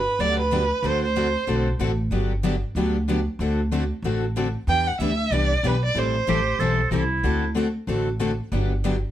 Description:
acoustic string swing (jazz manouche); 188 BPM; 4/4; swing 59% on 8ths; G major; A4 = 440 Hz
warm violin; melody; 0.0-1.6, 4.7-6.9 s; B4 to G5; -24 LUFS; right 3 dB
upright bass; bass; 0.0-9.0 s; G1 to E2; -25 LUFS; equal
picked steel-string acoustic guitar; accompaniment; 0.2-8.9 s; D3 to A4; -26 LUFS; left 5 dB
picked steel-string acoustic guitar; accompaniment; 0.2-8.9 s; D3 to B4; -32 LUFS; right 5 dB
bright clarinet; second line; 6.3-7.5 s; E4 to A4; -25 LUFS; right 4 dB
light reverb; -21 LUFS; side -12 dB against mid
0.0-9.1 A section
0.0 Gmaj7; 0.8 D7; 2.1 Gmaj7; 3.4 D7; 4.7 Em7; 6.0 Am7; 7.2 D7; 8.5 Gmaj7
0.20 0.52 | 0.84 1.16 1.48 1.80 | 2.12 2.44 2.76 3.08 | 3.40 3.72 4.04 4.36 | 4.68 5.00 5.32 5.63 | 5.96 6.28 6.59 6.92 | 7.24 7.55 7.88 8.20 | 8.52 8.84

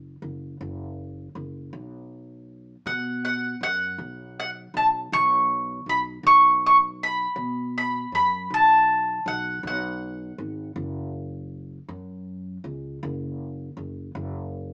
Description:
acoustic country blues, solo or duo; 53 BPM (dotted quarters); 12/8; straight; A4 = 440 Hz
upright bass; bass; 0.0-14.7 s; F#1 to B2; -33 LUFS; equal
mandolin; melody; 2.9-11.1 s; F#5 to C#6; -19 LUFS; equal
wet studio reverb, RT60 0.6 s; band playing live in one room, small speaker sound; -20 LUFS; side -22 dB against mid
0.0-14.7 A section
0.0 F#5; 1.7 B5; 10.8 F#5
0.60 | 1.73 2.86 3.99 5.11 | 6.24 7.37 8.50 9.63 | 10.76 11.88 13.01 14.14

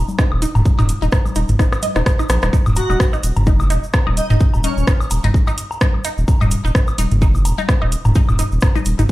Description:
minimal techno; 128 BPM; 4/4; swing 56% on 16ths; Eb minor; A4 = 440 Hz
saturated sub bass; bass; 0.0-9.1 s; Eb1 to Bb1; -18 LUFS; equal; sidechain pumping
electronic congas, woodblock and toms; percussion; 0.1-9.1 s; -21 LUFS; left 1 dB
tube shaker; percussion; 0.1-9.1 s; -34 LUFS; right 2 dB
resonant blip pluck; riff; 0.2-9.0 s; Eb4 to Eb5; -26 LUFS; equal; phaser, sidechain pumping, ping-pong delay
electronic kick drum; drums; 0.2-9.1 s; -15 LUFS; equal
house drum kit; drums; 0.2-9.1 s; hi-hat, rim click; -22 LUFS; equal
airy dreamy lead; melody; 2.8-4.8 s; Db4 to Gb4; -24 LUFS; equal; chorus, digital delay
light reverb; played on a big sound system in a bare room, large studio reverb; -14 LUFS; side -17 dB against mid
0.0-9.1 A section
drum fill 1.6-2.5
0.0 Eb5
0.19 | 0.66 1.12 1.59 2.06 | 2.53 3.00 3.47 3.94 | 4.41 4.87 5.34 5.81 | 6.28 6.75 7.22 7.69 | 8.16 8.62 9.09

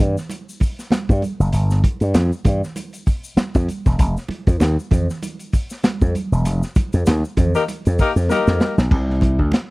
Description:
funk; 98 BPM; 4/4; swing 56% on 16ths; A4 = 440 Hz
slap bass with an envelope filter; bass; 0.0-9.5 s; E1 to G2; -17 LUFS; equal
crunchy breakbeat drum kit; drums; 0.2-9.7 s; crash cymbal, hi-hat, kick drum, snare drum; -18 LUFS; equal
egg shaker; percussion; 0.2-8.9 s; -41 LUFS; left 4 dB
congas; percussion; 0.3-9.7 s; -29 LUFS; right 4 dB
mellow horn section; second line; 7.5-8.8 s; Bb3 to Bb4; -19 LUFS; left 4 dB
studio reverb; dry, close 1970s-style studio recording; -16 LUFS; side -23 dB against mid
0.0-8.9 A section
band accent 6.4-8.9; drum fill 8.3-8.9
0.0 N.C.; 8.9 Csus2
0.31 0.92 | 1.53 2.15 2.76 3.38 | 3.99 4.61 5.22 5.83 | 6.45 7.06 7.68 8.29 | 8.91 9.53

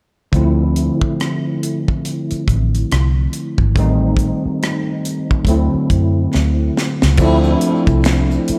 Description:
R&B, neo-soul; 70 BPM; 4/4; swing 59% on 16ths; D minor; A4 = 440 Hz
overdriven tine electric piano; accompaniment; 0.3-8.6 s; D3 to E4; -20 LUFS; equal; ensemble chorus
vintage muted fingered electric bass; bass; 0.3-8.5 s; G#1 to F#2; -18 LUFS; equal
tight funk drum kit; drums; 0.3-8.6 s; crash cymbal, hi-hat, kick drum, rim click, snare drum; -22 LUFS; equal
tube shaker and finger snaps; percussion; 7.2-8.5 s; -34 LUFS; equal
studio reverb; echo-heavy mix; -16 LUFS; mono
0.3-7.2 A section; 7.2-8.6 B section
drum fill 6.3-7.2
0.3 Dm7; 3.8 Am7b5; 5.5 D7; 7.2 Dm7
| 0.32 1.18 2.04 2.90 | 3.75 4.61 5.47 6.32 | 7.18 8.04

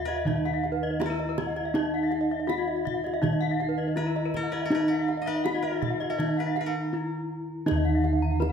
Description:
Balinese gamelan; 81 BPM; 4/4; straight; Eb pelog; A4 = 439 Hz
gamelan-type bronze metallophone; melody; 0.0-8.5 s; Eb4 to Cb5-40c; -30 LUFS; right 1 dB
koto; second line; 0.0-8.5 s; Bb4-45c to Eb5; -38 LUFS; left 3 dB
gamelan-type bronze metallophone; arpeggios; 0.0-8.4 s; Cb5-40c to Gb5-50c; -35 LUFS; right 5 dB
gamelan-type bossed gongs; bass; 0.0-8.5 s; Eb2 to Fb4; -29 LUFS; equal
gamelan-type bronze metallophone; arpeggios; 0.1-8.5 s; Cb5-40c to Cb6-40c; -33 LUFS; left 5 dB
kendang; percussion; 0.1-8.5 s; -36 LUFS; right 4 dB
gamelan-type bronze metallophone; accompaniment; 7.7-8.5 s; Eb3; -32 LUFS; right 3 dB
moderate recital hall reverb, RT60 1.6 s; -25 LUFS; side -7 dB against mid
0.0-8.5 A section
break 6.6-7.7
0.26 1.00 | 1.74 2.48 3.22 3.96 | 4.70 5.44 6.18 6.92 | 7.67 8.41

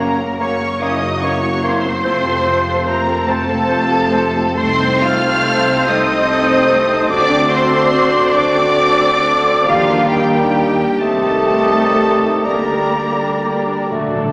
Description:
classical, slow romantic movement for symphony orchestra; 40-50 BPM (dotted quarters); 6/8; rubato; G minor from 4.6 s; A4 = 440 Hz
rich symphonic violin section; melody; 0.0-13.9 s; F5 to F6; -26 LUFS; equal
clear symphonic violin section; second line; 0.0-13.9 s; F4 to F5; -24 LUFS; equal
silver concert flute; second line; 0.0-13.9 s; F5 to F6; -24 LUFS; equal
warm clarinet; second line; 0.0-14.3 s; Db4 to A4; -26 LUFS; equal
warm oboe; second line; 0.0-14.3 s; C5 to Eb5; -24 LUFS; equal
rich symphonic viola section; accompaniment; 0.0-14.3 s; A3 to C5; -25 LUFS; equal
warm bassoon; accompaniment; 0.0-14.3 s; G3 to C4; -26 LUFS; equal
mellow French horn section; sustained chords; 0.0-14.3 s; G3 to F#4; -26 LUFS; equal
warm trombone section; sustained chords; 0.0-14.3 s; C3 to A3; -25 LUFS; equal
rich studio cello section; bass; 0.0-13.9 s; F3 to F4; -27 LUFS; equal
rich symphonic double bass section; bass; 0.0-14.3 s; F1 to Eb2; -28 LUFS; equal
timpani; percussion; 13.9-14.3 s; D3; -25 LUFS; equal
wet scoring stage reverb, RT60 1.7 s; -15 LUFS; mono
0.0-14.3 A section
timpani fill 13.9-14.3
0.0 Gb; 0.8 Gb7; 2.1 F; 4.6 Adim/C; 7.1 D7; 9.7 Ebmaj7; 11.0 Am7b5/C; 12.4 Gm/D
0.82 | 2.05 3.28 | 4.57 5.87 | 7.09 8.35 | 9.67 11.02 | 12.45 13.91

